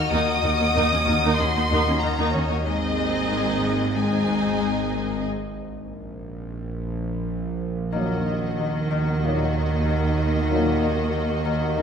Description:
cinematic, suspense film score; 93 BPM; 4/4; straight; Eb minor from 7.9 s; A4 = 437 Hz
rich studio violin section; melody; 0.0-11.8 s; Db5 to F6; -29 LUFS; left 1 dB
rich studio violin section; second line; 0.0-11.8 s; Gb4 to Eb5; -30 LUFS; left 3 dB
rich studio viola section; accompaniment; 0.0-11.8 s; Bb3 to Eb4; -28 LUFS; right 2 dB
Celtic harp; riff; 0.0-11.8 s; Ab2 to Eb4; -29 LUFS; left 7 dB
clear studio cello section; bass; 0.0-11.8 s; Eb2 to Eb3; -28 LUFS; right 2 dB
bowed-like drone; drone; 0.0-11.8 s; Ab1 to Eb2; -28 LUFS; right 1 dB; built-in reverb
clear studio double bass section; bass; 0.1-11.8 s; Ab1 to Eb2; -30 LUFS; right 3 dB
mellow French horn section; sustained chords; 7.9-11.8 s; Bb3 to Eb4; -30 LUFS; left 5 dB
warm trombone section; sustained chords; 7.9-11.8 s; Bb2 to Gb3; -32 LUFS; right 3 dB
wet scoring stage reverb, RT60 1.7 s; minimal, uncompressed stereo recording; -20 LUFS; side -7 dB against mid
0.0-7.9 A section; 7.9-11.8 B section
break 5.3-7.9
0.0 Ebm; 2.7 Ab; 5.3 Absus2/Bb; 7.9 Ebm

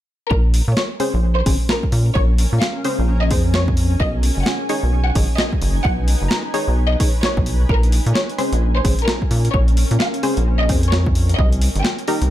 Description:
UK garage, two-step garage; 130 BPM; 4/4; swing 61% on 16ths; A4 = 436 Hz
clear chamber violin section; melody; 0.3-12.0 s; Bb4 to Bb5; -26 LUFS; equal; tape echo
rubbery square bass; bass; 0.3-12.3 s; F#1 to Bb2; -17 LUFS; equal
electronic kick drum; drums; 0.3-11.5 s; -19 LUFS; equal
granular cloud pad; texture; 1.3-12.3 s; Db4 to Bb5; -29 LUFS; equal; built-in reverb, sidechain pumping
breakbeat sampler-style drum kit; drums; 0.5-12.3 s; hi-hat, rim click, snare drum; -24 LUFS; equal; overdrive
punchy chord stab; stabs; 1.0-12.2 s; Db4 to Db5; -23 LUFS; left 1 dB; chorus, digital delay
little or no reverb; -15 LUFS; side -13 dB against mid
0.3-12.3 A section
0.3 Bbm7; 4.0 B6; 7.7 Bbm7; 11.4 Cm7

